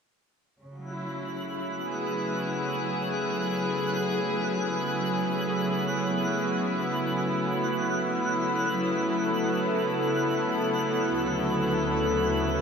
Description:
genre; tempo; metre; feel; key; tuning
ambient; free time; none; none; A major; A4 = 440 Hz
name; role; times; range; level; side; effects
rich chamber string section; sustained chords; 0.6-12.6 s; D2 to A4; -26 LUFS; equal; none
analog drone; drone; 1.0-12.6 s; A3 to E4; -34 LUFS; equal; chorus
twinkling granular texture; texture; 0.9-12.6 s; F#6; -36 LUFS; right 2 dB; built-in reverb
room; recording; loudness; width
wet lush hall reverb, RT60 2.6 s; dreamy mix soaked in reverb, cassette tape; -25 LUFS; side -6 dB against mid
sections
0.6-12.6 A section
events
none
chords
0.6 Amaj7; 7.6 F#m; 11.1 Dsus2

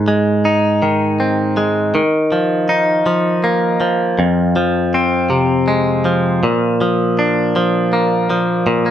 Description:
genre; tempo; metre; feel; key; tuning
pop; 53 BPM (dotted quarters); 6/8; straight; unclear; A4 = 442 Hz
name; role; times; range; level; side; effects
direct-recorded clean electric guitar; solo; 0.0-8.9 s; F2 to Eb4; -13 LUFS; equal; none
room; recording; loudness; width
light reverb; band playing live in one room; -13 LUFS; side -10 dB against mid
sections
0.0-8.7 A section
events
none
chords
0.0 Ab; 1.9 Ebsus2; 4.2 Fm; 6.4 Bb

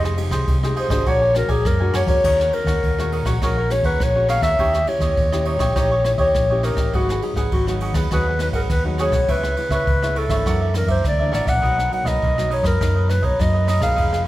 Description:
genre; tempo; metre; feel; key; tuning
samba and choro; 102 BPM; 4/4; straight; Eb minor; A4 = 440 Hz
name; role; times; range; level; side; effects
cavaquinho; accompaniment; 0.0-14.3 s; Eb4 to Ab5; -28 LUFS; right 3 dB; none
nylon-string guitar; accompaniment; 0.0-14.3 s; Gb2 to Ab4; -29 LUFS; left 4 dB; none
fingered electric bass; bass; 0.0-14.2 s; F1 to F#2; -22 LUFS; equal; none
jazz brush drum kit; drums; 0.0-14.3 s; crash cymbal, kick drum, ride cymbal, rim click; -23 LUFS; equal; none
mellow clarinet; melody; 0.8-14.2 s; Gb4 to F#5; -21 LUFS; left 1 dB; none
room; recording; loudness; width
moderate recital hall reverb, RT60 1.5 s; recorded in a church or concert hall; -17 LUFS; side -16 dB against mid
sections
0.0-2.2 A section; 2.2-14.3 B section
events
none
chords
0.0 Fm9; 1.1 Bb7alt; 2.2 Ebm7; 4.6 Eb7b9; 6.9 Abm7; 9.3 Dbm7; 10.5 Gb7alt; 11.6 Bmaj7

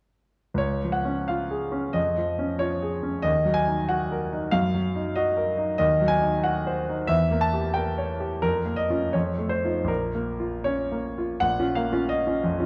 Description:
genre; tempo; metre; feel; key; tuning
classical, romantic character piece for solo piano; 76-96 BPM; 2/4; rubato; Db major, Bb minor from 5.8 s; A4 = 440 Hz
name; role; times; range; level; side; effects
clear grand piano; solo; 0.5-12.7 s; Bb1 to A5; -25 LUFS; equal; none
room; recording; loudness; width
moderate recital hall reverb, RT60 1.3 s; dark, warm production; -25 LUFS; mono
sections
0.6-11.4 A section; 11.4-12.7 B section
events
none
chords
0.6 Db; 2.0 Db/F; 3.3 Ebm; 4.5 Ebm/Gb; 5.8 Cdim/Eb; 7.1 Edim7; 8.4 Bbm/F; 9.1 F7; 9.9 Bbm

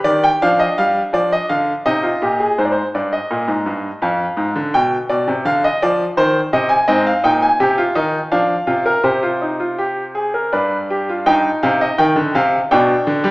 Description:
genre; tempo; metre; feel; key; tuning
classical, baroque-style 3-part fugue for grand piano; 83 BPM; 3/4; straight; C minor from 6.9 s; A4 = 442 Hz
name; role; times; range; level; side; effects
bright grand piano; solo; 0.0-13.3 s; F2 to Ab5; -14 LUFS; equal; none
room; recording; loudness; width
wet recital hall reverb, RT60 1.3 s; recorded in a church or concert hall, small speaker sound; -14 LUFS; side -23 dB against mid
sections
0.0-2.6 A section; 2.6-11.3 B section; 11.3-13.3 C section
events
none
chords
0.4 G5/F; 1.8 Cm; 2.6 Ab5; 4.0 Ddim/F; 4.7 G7/B; 6.2 Cm/Eb; 6.9 Ab; 8.3 F5; 9.0 Gsus4/C; 10.5 G; 11.3 Cm/G; 12.7 G/B

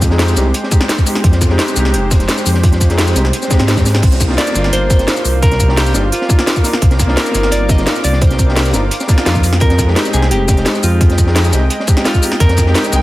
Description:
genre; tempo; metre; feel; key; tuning
liquid drum and bass; 172 BPM; 4/4; straight; unclear; A4 = 440 Hz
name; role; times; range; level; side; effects
warm concert grand piano; accompaniment; 0.0-13.0 s; Ab3 to G5; -20 LUFS; left 1 dB; digital delay
warm analog pad; sustained chords; 0.0-13.0 s; Ab3 to D6; -24 LUFS; right 1 dB; chorus, sidechain pumping
swelling detuned saw bass; bass; 0.0-13.0 s; F1 to Ab2; -14 LUFS; equal; none
crunchy breakbeat drum kit; drums; 0.0-13.0 s; hi-hat, snare drum; -23 LUFS; equal; high-pass filter on hats, high-pass filter on snare, high-pass filter on room
electronic kick drum; drums; 0.0-12.6 s; none; -12 LUFS; equal; none
garage drum kit; drums; 0.0-13.0 s; crash cymbal, hi-hat, shaker, snare drum; -18 LUFS; equal; none
swell; sound effects; 3.5-4.0 s; none; -26 LUFS; right 1 dB; none
mellow electric guitar; melody; 4.4-13.0 s; F4 to Eb5; -20 LUFS; equal; dub echo
room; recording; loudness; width
digital ambience; none; -10 LUFS; side -17 dB against mid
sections
0.0-13.0 A section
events
swell 3.5-4.0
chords
0.0 Fm9; 4.0 Cm11; 9.4 Fm9

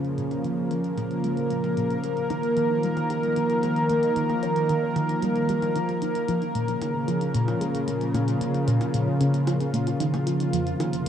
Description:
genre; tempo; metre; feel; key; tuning
ambient, sequencer-driven space music; 113 BPM; 4/4; straight; Bb dorian; A4 = 442 Hz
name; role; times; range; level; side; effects
lush unison pad; sustained chords; 0.0-11.1 s; C3 to Bb4; -24 LUFS; equal; chorus
tight sequenced synth; riff; 0.0-11.1 s; F2 to G4; -28 LUFS; equal; chorus, phaser, analog delay
electronic hi-hat and percussion blips; percussion; 0.0-11.1 s; none; -41 LUFS; left 1 dB; analog delay
room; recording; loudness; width
wet huge ambient reverb, RT60 8.3 s; cassette tape; -22 LUFS; side -9 dB against mid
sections
0.0-11.1 A section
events
fade-in on drum 0.0-11.1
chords
0.0 Bbm; 2.0 Ebsus2; 6.3 Bbm; 10.5 F5

